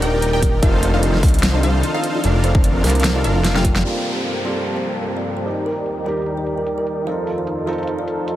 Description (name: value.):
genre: future bass.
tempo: 149 BPM.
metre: 4/4.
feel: swing 55% on 16ths, half-time.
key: G minor.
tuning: A4 = 440 Hz.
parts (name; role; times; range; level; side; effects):
kalimba; melody; 0.0-8.3 s; Bb3 to G5; -25 LUFS; equal; sidechain pumping, tape echo.
airy breathy pad; sustained chords; 0.0-8.4 s; Eb2 to A5; -31 LUFS; left 1 dB; chorus, sidechain pumping.
concert harp; arpeggios; 0.0-6.0 s; F4 to F5; -33 LUFS; right 1 dB; none.
wide unison pluck; arpeggios; 0.0-3.8 s; F5 to G5; -32 LUFS; equal; none.
dense compressed supersaw; riff; 0.0-8.4 s; C4 to G5; -24 LUFS; equal; sidechain pumping, low-pass filter.
wide detuned saw bass; bass; 0.0-3.8 s; Eb1 to C2; -18 LUFS; equal; chorus, sidechain pumping.
big-room dance drum kit; drums; 0.0-8.4 s; hi-hat, snare drum; -23 LUFS; equal; overdrive, low-pass filter on hats, low-pass filter on snare.
electronic kick drum; drums; 0.4-3.7 s; none; -17 LUFS; equal; overdrive.
felt-muted upright piano; accompaniment; 3.8-8.4 s; F3 to A5; -26 LUFS; right 2 dB; vintage 12-bit sampler grit, sidechain pumping.
downlifter; sound effects; 3.8-7.1 s; none; -30 LUFS; equal; none.
room: little or no reverb.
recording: none.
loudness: -16 LUFS.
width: side -13 dB against mid.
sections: 0.0-3.8 A section; 3.8-8.4 B section.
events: drop 0.0-3.8; drum fill 3.4-3.8; band accent 3.7.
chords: 0.0 Ebmaj7; 0.6 F7; 2.2 Bbmaj7/F; 3.8 Gm11; 5.5 Ebmaj7; 7.1 F7.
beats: 0.22 | 0.63 1.03 1.43 1.83 | 2.24 2.64 3.04 3.44 | 3.85 4.25 4.65 5.05 | 5.46 5.86 6.26 6.67 | 7.07 7.47 7.87 8.28.